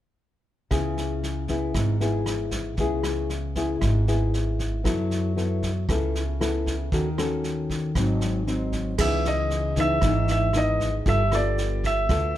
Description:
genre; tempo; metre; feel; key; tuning
bossa nova; 116 BPM; 4/4; straight; C# minor; A4 = 441 Hz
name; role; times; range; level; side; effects
nylon-string guitar; accompaniment; 0.7-12.4 s; G#2 to A4; -27 LUFS; left 3 dB; none
upright bass; bass; 0.7-12.4 s; G1 to F#2; -26 LUFS; right 1 dB; none
vintage brush drum kit; drums; 0.7-12.4 s; crash cymbal, kick drum, rim click, snare drum; -30 LUFS; right 1 dB; none
warm concert grand piano; melody; 9.0-12.4 s; D5 to E5; -25 LUFS; right 1 dB; none
tine electric piano; accompaniment; 9.0-11.1 s; G#4; -35 LUFS; right 2 dB; phaser
room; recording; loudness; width
light reverb; none; -22 LUFS; side -12 dB against mid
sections
0.7-9.0 A section; 9.0-12.4 B section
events
none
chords
0.7 C#m7; 4.9 F#m7; 6.9 D#m7b5; 8.0 G#7; 9.0 C#m9; 11.1 G9

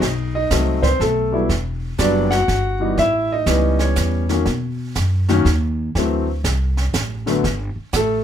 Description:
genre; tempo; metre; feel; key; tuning
jazz piano trio; 121 BPM; 3/4; swing 66% on 8ths; unclear; A4 = 441 Hz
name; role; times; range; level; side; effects
warm concert grand piano; melody; 0.0-8.2 s; D3 to F#5; -18 LUFS; left 1 dB; none
upright bass; bass; 0.0-8.2 s; E1 to B2; -20 LUFS; equal; none
jazz brush drum kit; drums; 0.0-8.2 s; brushed snare drum, hi-hat, kick drum, snare drum; -25 LUFS; right 3 dB; none
room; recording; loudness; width
moderate club reverb, RT60 0.6 s; minimal, uncompressed stereo recording; -17 LUFS; side -9 dB against mid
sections
0.0-8.2 A section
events
none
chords
0.0 B7b9; 1.5 Em9; 3.0 A9; 4.5 B; 5.9 D7; 7.4 Gsus2

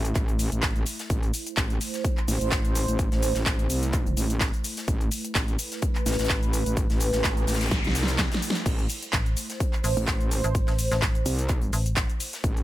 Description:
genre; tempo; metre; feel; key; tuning
bass house; 127 BPM; 4/4; swing 55% on 16ths; A minor; A4 = 440 Hz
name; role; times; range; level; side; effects
sweeping resonant pad; sustained chords; 0.0-12.6 s; A3 to E5; -33 LUFS; right 2 dB; chorus, sidechain pumping
metallic wobble bass; bass; 0.0-12.6 s; A1 to C2; -27 LUFS; equal; chorus, sidechain pumping
big-room dance drum kit; drums; 0.0-12.6 s; cabasa, crash cymbal, handclaps, hi-hat, snare drum; -30 LUFS; equal; none
electronic kick drum; drums; 0.2-12.5 s; none; -26 LUFS; equal; none
tight metal drum kit; drums; 0.2-12.6 s; hi-hat, snare drum; -39 LUFS; left 2 dB; none
noise sweep; sound effects; 7.1-8.7 s; none; -36 LUFS; equal; none
metallic FM bass; bass; 9.1-12.1 s; A1; -26 LUFS; equal; overdrive, sidechain pumping
room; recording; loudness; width
little or no reverb; none; -23 LUFS; side -15 dB against mid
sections
0.0-12.6 A section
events
noise sweep 7.1-8.7; drum fill 7.7-8.7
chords
0.0 Am

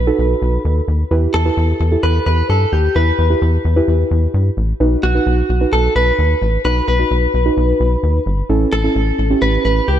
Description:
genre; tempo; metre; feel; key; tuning
synth-pop; 130 BPM; 4/4; straight; E harmonic minor; A4 = 437 Hz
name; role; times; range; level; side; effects
direct-recorded clean electric guitar; melody; 0.0-10.0 s; F#4 to B4; -19 LUFS; equal; lush chorus, ping-pong delay
rubbery square bass; bass; 0.0-10.0 s; G1 to G2; -15 LUFS; equal; none
muted felt-like synth keys; accompaniment; 0.1-10.0 s; C#4 to B4; -20 LUFS; right 2 dB; chorus
room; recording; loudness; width
light reverb, digital ambience; dark, warm production; -13 LUFS; side -10 dB against mid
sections
0.0-10.0 A section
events
none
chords
0.0 B; 1.1 Em; 4.8 B; 8.5 A

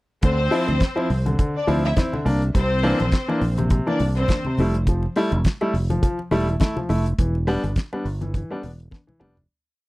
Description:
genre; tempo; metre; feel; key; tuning
disco; 104 BPM; 4/4; swing 56% on 16ths; D minor; A4 = 438 Hz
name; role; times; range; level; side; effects
rich studio string section; second line; 0.2-4.6 s; C4 to E5; -26 LUFS; left 1 dB; tape echo
clear baby grand piano; accompaniment; 0.2-9.3 s; C3 to E4; -24 LUFS; left 1 dB; none
overdriven fingered electric bass; bass; 0.2-9.4 s; E1 to D2; -22 LUFS; equal; none
damped 70s drum kit; drums; 0.2-9.5 s; hi-hat, kick drum, snare drum, toms; -20 LUFS; equal; none
congas; percussion; 0.2-9.4 s; none; -32 LUFS; left 3 dB; none
room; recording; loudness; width
little or no reverb; dry, close 1970s-style studio recording; -19 LUFS; side -20 dB against mid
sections
0.2-9.5 verse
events
fade-out 7.2-9.5; drum fill 8.9-9.5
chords
0.2 Dm7; 2.3 C7; 4.6 Fmaj7; 7.2 Em7

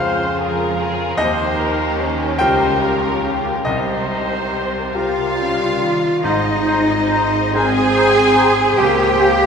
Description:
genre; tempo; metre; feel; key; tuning
cinematic, emotional film score for orchestra; 47 BPM (dotted quarters); 6/8; uneven beats, rubato; Ab major; A4 = 440 Hz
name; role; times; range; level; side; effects
warm studio violin section; melody; 0.0-9.5 s; Ab4 to C5; -28 LUFS; left 3 dB; none
dark studio violin section; second line; 0.0-9.5 s; Bb3 to Ab5; -23 LUFS; left 3 dB; none
bright grand piano; accompaniment; 0.0-9.5 s; C2 to G5; -21 LUFS; left 2 dB; none
warm studio viola section; accompaniment; 0.0-9.5 s; Ab3 to C5; -25 LUFS; right 2 dB; none
rich studio cello section; bass; 0.0-9.5 s; C3 to Ab4; -20 LUFS; right 2 dB; none
warm studio double bass section; bass; 0.0-9.5 s; Ab1 to F2; -26 LUFS; right 3 dB; none
warm clarinet; second line; 4.9-9.5 s; Eb4 to Ab4; -23 LUFS; left 2 dB; none
mellow French horn section; sustained chords; 5.0-9.5 s; G3 to C4; -24 LUFS; left 2 dB; none
concert flute; second line; 6.2-9.3 s; Ab5 to Bb5; -25 LUFS; left 4 dB; none
warm oboe; second line; 6.2-9.3 s; C5; -24 LUFS; equal; none
room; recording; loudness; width
wet church reverb, RT60 3.6 s; recorded in a church or concert hall; -14 LUFS; side -6 dB against mid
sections
0.0-6.2 A section; 6.2-9.5 B section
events
none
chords
0.0 Dbmaj7; 1.2 Ebadd9; 3.7 Cm7; 6.2 Abadd9; 8.8 Dbmaj7(no3)

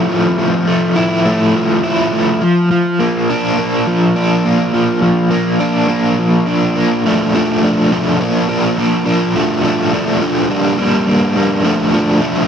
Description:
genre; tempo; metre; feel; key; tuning
rock; 104 BPM; 4/4; straight; unclear; A4 = 440 Hz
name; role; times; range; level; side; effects
crunchy overdriven guitar; solo; 0.0-12.5 s; F3 to E4; -12 LUFS; equal; tremolo, analog delay
room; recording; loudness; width
wet studio reverb, RT60 0.6 s; none; -12 LUFS; side -8 dB against mid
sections
0.0-7.1 A section; 7.1-12.5 B section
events
none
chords
0.0 Fmaj7; 2.4 Bb/F; 7.1 Dm; 8.2 Bb; 9.4 Dm; 10.5 Gm; 11.7 Dm

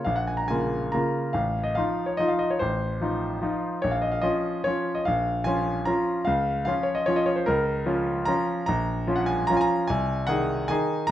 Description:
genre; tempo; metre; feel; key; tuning
classical, piano waltz; 137-158 BPM; 3/4; rubato; Bb minor; A4 = 440 Hz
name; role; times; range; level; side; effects
bright grand piano; solo; 0.0-11.1 s; A1 to Bb5; -23 LUFS; equal; none
room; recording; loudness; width
moderate large studio reverb, RT60 0.9 s; dark, warm production; -23 LUFS; side -12 dB against mid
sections
0.0-11.1 A section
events
none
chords
0.0 Bbm; 1.4 F7/A; 3.8 Bbm; 6.3 Bbm/Db; 8.7 Bbm; 9.9 Ab/C

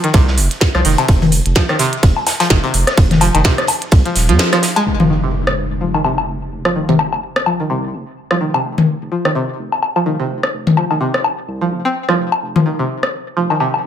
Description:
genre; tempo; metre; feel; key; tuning
minimal techno; 127 BPM; 4/4; swing 57% on 16ths; unclear; A4 = 439 Hz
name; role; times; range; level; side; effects
string-like resonator pluck; riff; 0.0-13.7 s; C3 to C4; -19 LUFS; right 1 dB; chorus, sidechain pumping, ping-pong delay
minimal click drum kit; drums; 0.0-4.8 s; hi-hat, snare drum; -19 LUFS; right 2 dB; overdrive, small room ambience
saturated sub bass; bass; 0.1-13.9 s; Eb1 to F2; -19 LUFS; right 1 dB; sidechain pumping, high-pass filter
electronic kick drum; drums; 0.1-4.0 s; none; -14 LUFS; right 1 dB; small room ambience
raw garage drum kit; drums; 0.1-4.9 s; hi-hat, snare drum; -26 LUFS; right 2 dB; sidechain pumping on hats, high-pass filter on hats, small room ambience, high-pass filter on snare, high-pass filter on room
booming analog drum machine; percussion; 0.7-13.8 s; rim click, toms, woodblock; -17 LUFS; left 3 dB; small room ambience
impact; sound effects; 4.9-6.8 s; none; -22 LUFS; equal; none
room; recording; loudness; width
moderate digital room reverb, RT60 1.2 s; none; -13 LUFS; side -9 dB against mid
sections
0.0-4.9 A section; 4.9-13.9 B section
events
drop 0.0-4.9; band accent 4.4; impact 4.9-6.8; filter sweep on synth pluck 4.9-13.9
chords
0.0 F5

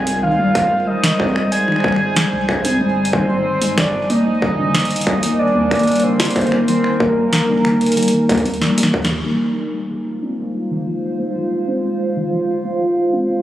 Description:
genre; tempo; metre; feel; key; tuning
IDM; 93 BPM; 4/4; straight; F minor; A4 = 439 Hz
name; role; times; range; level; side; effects
warbly nostalgic lead; melody; 0.0-8.9 s; Bb4 to Ab5; -20 LUFS; right 1 dB; chorus, digital delay
warbly tape-like pad; sustained chords; 0.0-13.4 s; G3 to Ab5; -19 LUFS; equal; chorus, built-in reverb
warm sub bass; bass; 0.0-9.2 s; Eb1 to Eb2; -30 LUFS; equal; none
booming analog drum machine; drums; 0.1-9.2 s; finger snaps, hi-hat, snare drum; -21 LUFS; equal; none
warbly dusty pluck; arpeggios; 0.2-13.3 s; D3 to G4; -22 LUFS; equal; chorus, vintage 12-bit sampler grit, ping-pong delay
electronic kick drum; drums; 0.6-9.1 s; none; -21 LUFS; equal; distortion
room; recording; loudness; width
moderate echo chamber reverb, RT60 2.4 s; recorded on a phone in the room, club reverb; -15 LUFS; side -13 dB against mid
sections
0.0-9.3 A section; 9.3-13.4 B section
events
drum fill 8.6-9.3; band accent 9.0-9.4; filter sweep on ambient pad 9.3-13.4; filter sweep on synth pluck 9.3-13.4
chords
0.0 Abmaj7; 4.1 Ebmaj7; 9.3 Fm7

